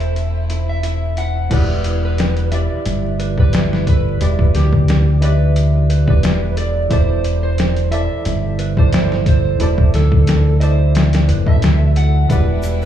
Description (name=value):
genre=trip hop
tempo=89 BPM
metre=4/4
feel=swing 54% on 16ths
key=E minor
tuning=A4 = 440 Hz
part: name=electric slide guitar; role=melody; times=0.0-12.9 s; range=G4 to F#5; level=-24 LUFS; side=right 2 dB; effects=tape echo
part: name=tine electric piano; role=accompaniment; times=0.0-12.9 s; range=E3 to E5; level=-22 LUFS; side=equal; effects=tremolo
part: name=rich chamber violin section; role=sustained chords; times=0.0-1.5, 12.3-12.9 s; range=G3 to E4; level=-34 LUFS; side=left 1 dB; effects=none
part: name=mellow electric guitar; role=arpeggios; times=0.0-12.6 s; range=E4 to E5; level=-30 LUFS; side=equal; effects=tape echo
part: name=deep dub fingered electric bass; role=bass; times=0.0-12.9 s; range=E1 to D2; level=-15 LUFS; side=equal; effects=none
part: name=trip hop sampler-style drum kit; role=drums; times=0.0-12.8 s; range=crash cymbal, hi-hat, kick drum, snare drum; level=-18 LUFS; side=equal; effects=high-pass filter on hats, high-pass filter on snare, high-pass filter on kick, high-pass filter on cymbals
part: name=egg shaker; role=percussion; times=12.3-12.9 s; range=none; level=-40 LUFS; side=right 1 dB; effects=none
room=little or no reverb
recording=played on a big sound system in a bare room, large studio reverb, vinyl crackle, small room ambience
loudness=-13 LUFS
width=side -10 dB against mid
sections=0.0-1.5 A section; 1.5-12.9 B section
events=filter sweep on violin section 0.0-1.5; filter sweep on clean electric guitar 0.0-1.5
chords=0.0 C6/E; 1.5 Em7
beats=0.16 0.84 | 1.51 2.19 2.86 3.53 | 4.21 4.88 5.56 6.23 | 6.90 7.58 8.25 8.93 | 9.60 10.28 10.95 11.62 | 12.30